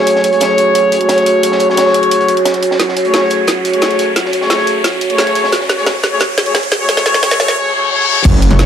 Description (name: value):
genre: dark technical drum and bass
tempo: 176 BPM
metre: 4/4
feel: straight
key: F# minor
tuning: A4 = 440 Hz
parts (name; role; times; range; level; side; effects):
- dark analog pad; sustained chords; 0.0-8.7 s; A3 to G#5; -16 LUFS; right 2 dB; chorus, sidechain pumping
- clear brass ensemble; stabs; 0.0-8.7 s; A3 to C#5; -15 LUFS; left 2 dB; low-pass filter, tape echo
- riser, reverse cymbal and impact; sound effects; 0.3-8.7 s; none; -21 LUFS; equal; none
- crunchy breakbeat drum kit; drums; 0.1-8.7 s; hi-hat, snare drum; -22 LUFS; equal; high-pass filter on hats, high-pass filter on snare, high-pass filter on room
- drum and bass drum kit; drums; 0.1-8.7 s; crash cymbal, hi-hat, snare drum; -16 LUFS; equal; none
- wide detuned saw bass; bass; 8.3-8.7 s; F#1; -10 LUFS; equal; chorus, overdrive, sidechain pumping
- electronic kick drum; drums; 8.3 s; none; -10 LUFS; equal; none
room: wet digital room reverb, RT60 1.1 s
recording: dark, warm production, high-pass filter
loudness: -10 LUFS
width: side -8 dB against mid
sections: 0.0-8.3 A section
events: build-up 0.0-8.3; filter sweep 0.0-8.3; riser 0.3-7.6; drum fill 2.8-7.6; reverse cymbal 7.6-8.3; impact 8.3-8.7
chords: 0.0 F#madd9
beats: | 0.07 0.41 0.75 1.09 | 1.43 1.77 2.11 2.46 | 2.80 3.14 3.48 3.82 | 4.16 4.50 4.84 5.18 | 5.52 5.86 6.21 6.55 | 6.89 7.23 7.57 7.91 | 8.25 8.59